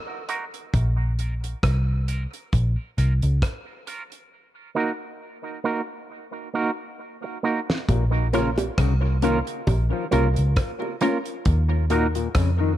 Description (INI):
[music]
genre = dub reggae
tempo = 67 BPM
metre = 4/4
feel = swing 56% on 16ths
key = Bb minor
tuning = A4 = 440 Hz
[part]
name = electric guitar with an envelope filter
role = accompaniment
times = 0.1-12.1 s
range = Bb3 to Bb4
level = -28 LUFS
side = right 4 dB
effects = tremolo, high-pass filter, low-pass filter, tape echo
[part]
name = damped 70s drum kit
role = drums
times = 0.3-12.6 s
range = hi-hat, kick drum, rim click, snare drum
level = -26 LUFS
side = equal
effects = none
[part]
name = vintage muted picked electric bass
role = bass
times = 0.7-12.8 s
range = Bb1 to F2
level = -21 LUFS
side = equal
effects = none
[part]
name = overdriven clav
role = arpeggios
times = 7.9-12.7 s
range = Bb2 to F3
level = -30 LUFS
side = left 9 dB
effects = phaser, tape echo
[part]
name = bongos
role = percussion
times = 7.9-11.2 s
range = none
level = -31 LUFS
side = right 2 dB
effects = tape echo
[part]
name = filtered dub chord stab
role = stabs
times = 8.3-12.1 s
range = Bb3 to Bb4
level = -29 LUFS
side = left 4 dB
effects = phaser, high-pass filter, low-pass filter, tape echo
[sound]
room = light reverb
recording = echo-heavy mix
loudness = -21 LUFS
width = side -12 dB against mid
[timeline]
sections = 0.0-7.9 A section; 7.9-12.8 B section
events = break 0.0-7.9; filter sweep 0.0-7.9; drum fill 6.1-7.9; part muted 11.5-12.8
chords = 0.0 Ebm; 0.7 Bbm; 4.3 Ebm; 7.9 Bbm; 11.5 Ebm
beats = | 0.73 1.63 2.52 3.42 | 4.31 5.21 6.10 7.00 | 7.89 8.78 9.68 10.57 | 11.46 12.36